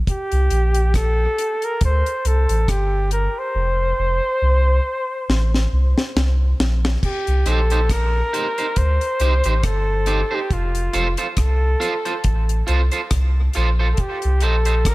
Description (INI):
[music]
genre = dub reggae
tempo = 69 BPM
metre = 4/4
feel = swing 57% on 16ths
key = C dorian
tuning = A4 = 440 Hz
[part]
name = soft dub sub bass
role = bass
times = 0.0-14.9 s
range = F1 to D2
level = -18 LUFS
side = equal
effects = none
[part]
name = clear flugelhorn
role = melody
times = 0.1-14.9 s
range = F4 to C5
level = -23 LUFS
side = equal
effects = dub echo
[part]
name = deep reggae drum kit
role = drums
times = 0.1-14.9 s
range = crash cymbal, hi-hat, kick drum, rim click, snare drum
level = -23 LUFS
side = equal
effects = none
[part]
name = electric guitar at the edge of break-up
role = accompaniment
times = 7.5-14.7 s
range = Eb4 to C5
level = -25 LUFS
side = right 3 dB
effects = high-pass filter, dub echo
[sound]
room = studio ambience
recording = echo-heavy mix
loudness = -17 LUFS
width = side -20 dB against mid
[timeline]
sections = 0.0-7.0 A section; 7.0-14.9 B section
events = break 0.0-7.0; drums muted 3.6-7.0; drum fill 5.3-7.0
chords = 0.1 C5; 3.6 F; 7.0 Cm; 10.5 F; 14.0 Cm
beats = | 0.08 0.94 1.81 2.68 | 3.55 4.42 5.29 6.16 | 7.03 7.90 8.77 9.64 | 10.51 11.38 12.24 13.11 | 13.98 14.85